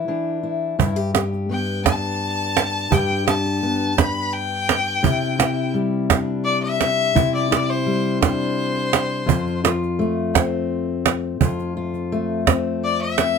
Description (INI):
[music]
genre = acoustic folk duo or small band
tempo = 85 BPM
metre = 3/4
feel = straight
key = G mixolydian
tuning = A4 = 440 Hz
[part]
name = fingerpicked steel-string acoustic guitar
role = accompaniment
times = 0.0-13.4 s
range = F2 to G4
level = -22 LUFS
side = left 3 dB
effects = none
[part]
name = cajon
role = percussion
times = 0.8-13.3 s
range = none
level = -18 LUFS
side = right 8 dB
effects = none
[part]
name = bright fiddle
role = melody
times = 1.5-9.6, 12.8-13.4 s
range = C5 to B5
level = -23 LUFS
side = left 4 dB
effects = none
[sound]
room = light reverb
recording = close, detailed microphones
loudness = -18 LUFS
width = side -6 dB against mid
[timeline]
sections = 0.8-13.4 A section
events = fiddle solo 0.8-13.4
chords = 0.0 Cadd9 (rootless); 0.8 G; 5.0 Cadd9; 9.3 F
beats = 0.08 | 0.79 1.50 2.21 | 2.92 3.62 4.33 | 5.04 5.75 6.46 | 7.16 7.87 8.58 | 9.28 9.99 10.70 | 11.40 12.11 12.82